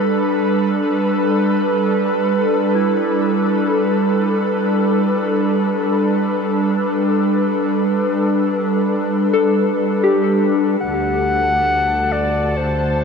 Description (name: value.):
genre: ambient.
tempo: free time.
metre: none.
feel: none.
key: unclear.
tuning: A4 = 440 Hz.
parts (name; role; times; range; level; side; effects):
airy breathy pad; sustained chords; 0.0-13.0 s; D3 to B4; -16 LUFS; equal; chorus.
soft synth bell; arpeggios; 0.0-11.2 s; E4 to A4; -23 LUFS; left 2 dB; chorus, phaser, ping-pong delay.
muted studio violin section; texture; 0.0-13.0 s; A4 to B5; -32 LUFS; left 1 dB; none.
mellow clarinet; melody; 10.8-13.0 s; C5 to F#5; -18 LUFS; left 2 dB; ping-pong delay.
muted studio double bass section; bass; 10.8-13.0 s; D2; -22 LUFS; left 1 dB; none.
room: wet huge ambient reverb, RT60 7.5 s.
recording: worn, warbling old tape, cassette tape, warbly pitch drift.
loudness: -15 LUFS.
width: side -5 dB against mid.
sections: 0.0-10.8 A section; 10.8-13.0 B section.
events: fade-out on violin section 0.0-10.8.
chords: 0.0 Gadd9; 10.8 D7.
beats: free time.